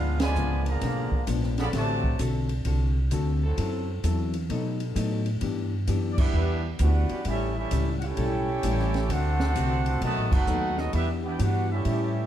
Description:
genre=jazz, big band swing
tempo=130 BPM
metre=4/4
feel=swing 66% on 8ths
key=D major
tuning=A4 = 440 Hz
part: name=warm trumpet section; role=melody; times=0.0-2.2, 6.1-12.3 s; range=B3 to B5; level=-32 LUFS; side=right 2 dB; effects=none
part: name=warm trombone section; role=second line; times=0.0-2.2, 6.2-12.3 s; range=C3 to G4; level=-33 LUFS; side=right 3 dB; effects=none
part: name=archtop guitar, miked and amplified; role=accompaniment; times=0.0-12.2 s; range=G#2 to A4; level=-31 LUFS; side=left 6 dB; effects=none
part: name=upright bass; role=bass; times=0.0-12.3 s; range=F#1 to B2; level=-26 LUFS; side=right 1 dB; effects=none
part: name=open jazz drum kit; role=drums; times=0.2-12.0 s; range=crash cymbal, hi-hat, kick drum, ride cymbal, snare drum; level=-33 LUFS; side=equal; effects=none
part: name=bright trombone section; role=sustained chords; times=1.6-12.3 s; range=E3 to B4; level=-38 LUFS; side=equal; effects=none
room=light reverb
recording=dark, warm production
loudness=-24 LUFS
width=side -11 dB against mid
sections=0.0-12.3 A section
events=band accent 0.1, 6.1, 10.2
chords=0.0 G#dim7; 1.7 D7; 3.6 F#m7b5; 4.5 B7; 5.4 Em7; 7.3 A7; 9.1 D7; 10.0 B7; 10.9 Em7

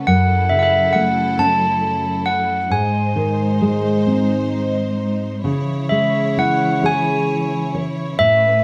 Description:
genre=children's music, lullaby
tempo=44 BPM (dotted quarters)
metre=6/8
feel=rubato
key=C# minor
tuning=A4 = 440 Hz
part: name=nylon-string guitar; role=accompaniment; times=0.0-8.6 s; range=F#2 to C#5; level=-22 LUFS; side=equal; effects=none
part: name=rich symphonic string section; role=sustained chords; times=0.0-8.6 s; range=E3 to C#5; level=-26 LUFS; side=equal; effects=none
part: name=handbells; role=melody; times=0.1-8.6 s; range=E5 to A5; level=-20 LUFS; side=equal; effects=none
room=light reverb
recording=close, detailed microphones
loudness=-18 LUFS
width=mono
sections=0.0-5.5 A section; 5.5-8.6 B section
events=none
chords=0.1 F#m7; 2.7 G#; 5.5 C#m

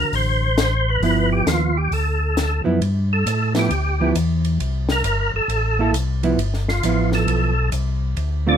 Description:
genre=soul jazz organ trio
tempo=134 BPM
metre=4/4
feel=swing 65% on 8ths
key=G mixolydian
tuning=A4 = 440 Hz
part: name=percussive tonewheel organ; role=melody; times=0.0-8.6 s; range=F4 to D5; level=-22 LUFS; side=equal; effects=overdrive, chorus vibrato, fast rotary speaker
part: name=hollow-body jazz guitar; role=accompaniment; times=0.0-8.6 s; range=D3 to A4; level=-21 LUFS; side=right 4 dB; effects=none
part: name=mellow tonewheel organ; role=bass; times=0.0-8.6 s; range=G1 to A2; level=-20 LUFS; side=equal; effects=overdrive, chorus vibrato, slow rotary speaker
part: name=compact cocktail drum kit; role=drums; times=0.1-8.3 s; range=hi-hat, ride cymbal, snare drum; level=-28 LUFS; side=left 2 dB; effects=none
room=light reverb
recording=minimal, uncompressed stereo recording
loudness=-17 LUFS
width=side -8 dB against mid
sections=0.0-2.8 A section; 2.8-8.6 B section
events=tonewheel organ solo 2.8-8.6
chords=0.0 D7; 1.0 G6; 1.9 D69; 2.8 G13; 4.6 C6; 6.4 G13

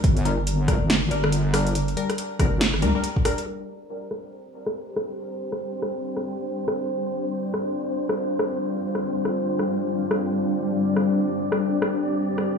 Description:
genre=deep dubstep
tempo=140 BPM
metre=4/4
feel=swing 60% on 16ths, half-time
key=G minor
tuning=A4 = 440 Hz
part: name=wobble bass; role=bass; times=0.0-2.9 s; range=G1 to D2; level=-23 LUFS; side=equal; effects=chorus
part: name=deep house drum kit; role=drums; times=0.0-12.4 s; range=hi-hat, rim click, snare drum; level=-27 LUFS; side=equal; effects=overdrive, low-pass filter on hats, small room ambience, low-pass filter on snare
part: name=electronic kick drum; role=drums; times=0.0-3.2 s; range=none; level=-22 LUFS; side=equal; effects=overdrive, small room ambience
part: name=filtered dub chord stab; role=stabs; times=0.3-3.4 s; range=G3 to Bb4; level=-29 LUFS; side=left 3 dB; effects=phaser, dub echo
part: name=granular cloud pad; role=sustained chords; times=4.8-12.6 s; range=G3 to G4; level=-25 LUFS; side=left 1 dB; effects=built-in reverb
part: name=wind-like tuned noise texture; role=texture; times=4.7-12.6 s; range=C4 to D5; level=-29 LUFS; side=equal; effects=built-in reverb
room=moderate lush hall reverb, RT60 2.1 s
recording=low-pass filter, studio reverb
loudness=-22 LUFS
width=side -6 dB against mid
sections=0.0-3.5 A section; 3.5-12.6 B section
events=filter sweep on drum 3.5-12.6; filter sweep on ambient pad 3.5-12.6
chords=0.0 Gm; 3.5 G5

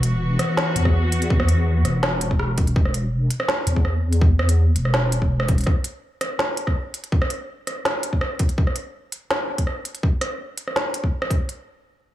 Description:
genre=half-time drum and bass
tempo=165 BPM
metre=4/4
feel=half-time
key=unclear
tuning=A4 = 439 Hz
part: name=dark studio cello section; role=sustained chords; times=0.0-2.7 s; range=E3 to F#4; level=-26 LUFS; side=left 2 dB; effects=sidechain pumping, low-pass filter
part: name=deep soft wobble bass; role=bass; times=0.0-5.7 s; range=E1 to E2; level=-19 LUFS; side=equal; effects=chorus
part: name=organic electronic drum kit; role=drums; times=0.0-11.6 s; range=hi-hat, rim click, snare drum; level=-25 LUFS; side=right 1 dB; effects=none
part: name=electronic kick drum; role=drums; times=0.9-11.4 s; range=none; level=-20 LUFS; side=equal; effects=overdrive
room=light reverb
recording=small room ambience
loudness=-19 LUFS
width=side -13 dB against mid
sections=0.0-11.5 A section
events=filter sweep on cello section 0.0-2.8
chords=0.0 Esus2

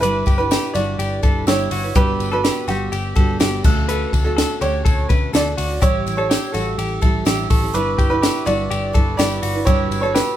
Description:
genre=jangly indie pop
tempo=124 BPM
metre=4/4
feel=straight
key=unclear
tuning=A4 = 435 Hz
part: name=clear upright piano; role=melody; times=0.0-10.4 s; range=G4 to D5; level=-23 LUFS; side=right 1 dB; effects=none
part: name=glockenspiel with rubber mallets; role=second line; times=0.0-10.4 s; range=B5 to F#6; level=-30 LUFS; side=right 6 dB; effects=none
part: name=picked steel-string acoustic guitar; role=accompaniment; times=0.0-10.4 s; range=A2 to B4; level=-25 LUFS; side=right 4 dB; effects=none
part: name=direct-recorded clean electric guitar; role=arpeggios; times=0.0-10.4 s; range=F#4 to B4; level=-26 LUFS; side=left 4 dB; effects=harmonic tremolo
part: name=vintage muted picked electric bass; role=bass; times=0.0-10.2 s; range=G1 to D2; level=-25 LUFS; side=equal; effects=none
part: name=compact cocktail drum kit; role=drums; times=0.0-10.3 s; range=crash cymbal, hi-hat, kick drum, ride cymbal, snare drum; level=-18 LUFS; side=equal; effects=none
part: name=tambourine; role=percussion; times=0.3-10.3 s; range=none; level=-35 LUFS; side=left 7 dB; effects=none
room=light reverb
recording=band playing live in one room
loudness=-16 LUFS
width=side -12 dB against mid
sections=0.0-10.4 A section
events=none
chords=0.0 Em7/G; 2.0 Gmaj7; 3.6 Dmaj7; 5.8 A7; 7.7 Em7/G; 9.7 Gmaj7

